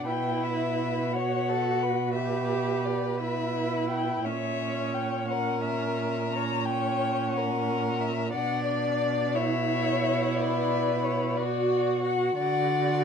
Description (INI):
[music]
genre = classical, slow romantic movement for string quartet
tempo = 59 BPM (dotted quarters)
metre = 12/8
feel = rubato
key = B minor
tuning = A4 = 439 Hz
[part]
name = warm violin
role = melody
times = 0.0-13.0 s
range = C#5 to A#5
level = -30 LUFS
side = left 9 dB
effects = none
[part]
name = warm violin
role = second line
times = 0.0-13.0 s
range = F#4 to D5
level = -32 LUFS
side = left 2 dB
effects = none
[part]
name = rich viola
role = accompaniment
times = 0.0-13.0 s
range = C#4 to G4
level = -31 LUFS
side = right 3 dB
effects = none
[part]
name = clear cello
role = bass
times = 0.0-13.0 s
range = A#2 to D3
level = -31 LUFS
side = right 6 dB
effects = none
[sound]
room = light reverb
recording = none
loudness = -25 LUFS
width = side -7 dB against mid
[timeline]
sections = 0.0-13.0 A section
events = none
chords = 0.1 Bsus4; 4.3 A#dim7; 8.3 Bm; 12.4 Bm/D (rootless)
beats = | 0.06 1.13 2.16 3.21 | 4.25 5.30 6.33 7.34 | 8.34 9.36 10.38 11.38 | 12.40